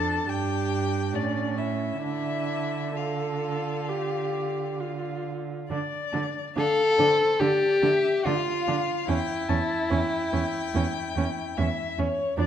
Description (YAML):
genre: classical, slow romantic movement for string quartet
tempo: 64-76 BPM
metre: 4/4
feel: rubato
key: D minor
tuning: A4 = 441 Hz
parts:
  - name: muted violin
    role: melody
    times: 0.0-12.5 s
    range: C5 to A5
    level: -32 LUFS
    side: left 6 dB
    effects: none
  - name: muted violin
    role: second line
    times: 0.0-11.9 s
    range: D4 to A4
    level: -26 LUFS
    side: left 2 dB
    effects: none
  - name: muted viola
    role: accompaniment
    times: 0.0-12.5 s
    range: C#4 to A4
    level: -32 LUFS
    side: right 4 dB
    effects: none
  - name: muted cello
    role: bass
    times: 0.0-12.5 s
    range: E2 to D3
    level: -30 LUFS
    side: right 4 dB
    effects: none
room: moderate recital hall reverb, RT60 1.4 s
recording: dark, warm production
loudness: -24 LUFS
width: side -9 dB against mid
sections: 0.0-5.7 A section; 5.7-12.5 B section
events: none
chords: 0.3 G5; 1.1 A; 2.0 Dm; 9.1 Em6